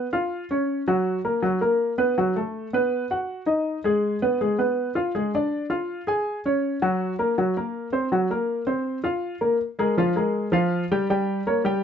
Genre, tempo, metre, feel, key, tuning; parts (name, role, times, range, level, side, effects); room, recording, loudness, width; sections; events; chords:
jazz; 162 BPM; 4/4; straight; A4 = 440 Hz
warm baby grand piano; solo; 0.0-11.8 s; F3 to Ab5; -22 LUFS; equal
light reverb; dark, warm production, nothing above 7.9 kHz; -22 LUFS; side -8 dB against mid
0.0-9.6 A section; 9.6-11.8 B section
0.0 Db; 0.7 Gb; 2.2 B7; 3.7 Abm6; 5.1 Ddim/Ab; 6.6 Gb; 8.9 F5; 9.6 Bb5; 11.1 Gdim